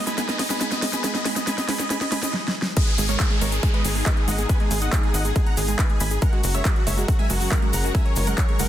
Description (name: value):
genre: uplifting trance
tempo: 139 BPM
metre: 4/4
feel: straight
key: G# minor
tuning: A4 = 440 Hz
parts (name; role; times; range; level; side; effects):
- dense compressed supersaw; melody; 0.0-8.7 s; F#4 to B5; -28 LUFS; equal; sidechain pumping, dub echo
- warm studio string section; sustained chords; 0.0-8.7 s; F#3 to A#4; -33 LUFS; left 2 dB; sidechain pumping
- tight sequencer bass; bass; 0.0-8.7 s; F#1 to B1; -25 LUFS; equal; sidechain pumping, high-pass filter
- riser and downlifter; sound effects; 0.0-6.2 s; none; -32 LUFS; equal; none
- wide unison pluck; arpeggios; 0.1-8.6 s; G#3; -32 LUFS; right 5 dB; sidechain pumping, dub echo
- big-room dance drum kit; drums; 0.1-8.7 s; crash cymbal, handclaps, hi-hat, snare drum; -27 LUFS; equal; overdrive, small room ambience
- egg shaker; percussion; 0.1-8.7 s; none; -33 LUFS; left 3 dB; none
- electronic kick drum; drums; 2.8-8.5 s; none; -21 LUFS; equal; overdrive, small room ambience
room: light reverb, digital ambience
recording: dense, heavily limited modern master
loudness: -20 LUFS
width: side -12 dB against mid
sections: 0.0-2.8 A section; 2.8-8.7 B section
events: build-up 0.0-2.8; drum fill 0.0-2.3, 2.3-2.8; riser 0.0-2.3; drop 2.8-8.7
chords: 0.0 B; 2.8 G#m; 6.2 F#add9